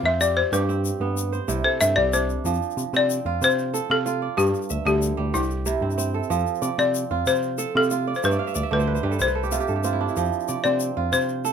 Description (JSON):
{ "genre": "west african traditional, West African string and xylophone music", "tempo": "125 BPM (dotted quarters)", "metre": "12/8", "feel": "straight", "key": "F lydian", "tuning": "A4 = 438 Hz", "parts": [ { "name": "balafon", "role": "melody", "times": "0.0-11.5 s", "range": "E4 to E5", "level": "-22 LUFS", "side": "left 4 dB", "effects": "none" }, { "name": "kora", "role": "arpeggios", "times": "0.0-11.5 s", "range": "G2 to F5", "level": "-26 LUFS", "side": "right 7 dB", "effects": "none" }, { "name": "bell-like tine electric piano", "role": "bass", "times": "0.0-11.5 s", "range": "C2 to C3", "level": "-26 LUFS", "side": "equal", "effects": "none" }, { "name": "egg shaker", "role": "percussion", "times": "0.2-11.5 s", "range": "none", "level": "-34 LUFS", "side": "left 8 dB", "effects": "none" } ], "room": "light reverb", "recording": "minimal, uncompressed stereo recording", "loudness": "-20 LUFS", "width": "side -7 dB against mid", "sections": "0.0-2.5 A section; 2.5-11.5 B section", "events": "balafon solo 0.0-2.5; kora fill 8.2-10.2", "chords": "0.0 F; 0.5 G; 1.5 C; 2.5 F; 4.4 G5; 5.3 C; 6.3 F; 8.2 G; 9.2 C5; 10.2 F" }